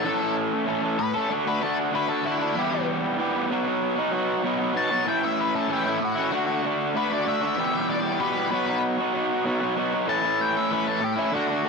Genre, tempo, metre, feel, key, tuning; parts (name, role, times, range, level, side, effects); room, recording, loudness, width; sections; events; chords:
rock; 96 BPM; 4/4; straight; A4 = 440 Hz
octave-fuzz lead guitar; melody; 0.0-11.7 s; E4 to A5; -28 LUFS; left 7 dB; distortion
crunchy overdriven guitar; riff; 0.0-11.7 s; E2 to A4; -23 LUFS; right 1 dB
moderate echo chamber reverb, RT60 1.4 s; -22 LUFS; side -4 dB against mid
0.0-11.7 A section
lead electric guitar solo 0.0-11.7
0.0 A; 1.3 D; 2.6 Em; 3.5 B; 5.1 A; 6.3 D; 7.6 Em; 8.5 B; 10.1 A